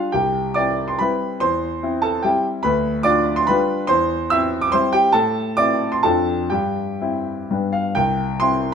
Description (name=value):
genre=classical, romantic triple-time dance for piano with dotted rhythms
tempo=116-153 BPM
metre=3/4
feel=rubato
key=C major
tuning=A4 = 443 Hz
part: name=clear concert grand piano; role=solo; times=0.0-8.7 s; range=C2 to E6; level=-17 LUFS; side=equal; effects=none
room=light reverb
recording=close, detailed microphones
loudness=-17 LUFS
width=side -7 dB against mid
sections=0.0-8.0 A section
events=none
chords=0.1 C; 1.4 C/E; 2.6 G7/D; 3.9 C/E; 5.1 Am; 6.0 Dm7/F; 6.5 C/G; 7.5 G; 8.0 C